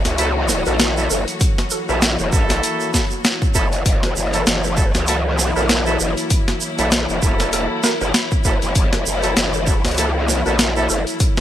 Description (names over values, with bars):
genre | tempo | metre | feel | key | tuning
glitch hop | 98 BPM | 4/4 | swing 57% on 16ths | unclear | A4 = 440 Hz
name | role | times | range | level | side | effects
warm symphonic string section | sustained chords | 0.0-11.4 s | E3 to F#4 | -27 LUFS | left 2 dB | sidechain pumping
growl bass | bass | 0.0-11.0 s | E1 to C#2 | -20 LUFS | equal | chorus, overdrive
tube shaker | percussion | 0.0-11.4 s | none | -26 LUFS | right 6 dB | none
warbly tape-like pad | texture | 0.0-11.4 s | E4 to C#5 | -29 LUFS | left 4 dB | chorus, built-in reverb, sidechain pumping
boom bap sampler-style drum kit | drums | 0.1-11.4 s | hi-hat, snare drum | -21 LUFS | equal | overdrive
warm horn section | stabs | 0.2-10.9 s | A#3 to A4 | -25 LUFS | right 1 dB | vintage 12-bit sampler grit, sidechain pumping, ping-pong delay
woody wave-folded pluck | melody | 0.7-11.1 s | A4 to A#4 | -29 LUFS | right 1 dB | lush chorus, ping-pong delay
electronic kick drum | drums | 1.4-11.3 s | none | -18 LUFS | equal | none
room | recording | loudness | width
light reverb, digital ambience | bright 1980s-style digital production | -15 LUFS | side -11 dB against mid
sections
0.0-11.4 A section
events
none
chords
0.0 F#7#9